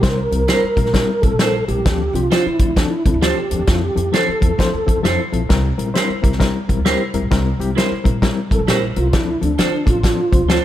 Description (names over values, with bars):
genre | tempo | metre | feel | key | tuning
uptempo 1960s-style soul | 132 BPM | 4/4 | swing 63% on 8ths | C mixolydian | A4 = 441 Hz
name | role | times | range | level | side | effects
mellow tonewheel organ | melody | 0.0-5.0, 8.5-10.6 s | D4 to Bb4 | -21 LUFS | right 1 dB | chorus vibrato, stopped rotary speaker
reed electric piano | accompaniment | 0.0-10.6 s | F3 to C5 | -22 LUFS | left 6 dB | fast tremolo
upright bass | bass | 0.0-10.6 s | A1 to D3 | -22 LUFS | equal | none
natural country drum kit | drums | 0.0-10.6 s | hi-hat, kick drum, snare drum | -18 LUFS | equal | none
clean electric guitar | stabs | 0.5-10.6 s | E4 to C5 | -24 LUFS | right 6 dB | vibrato effect
room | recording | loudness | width
light reverb | none | -15 LUFS | side -12 dB against mid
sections
0.0-10.6 A section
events
none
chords
0.0 C7; 1.9 Dm7; 3.7 Fmaj7; 5.5 C7; 9.1 Dm7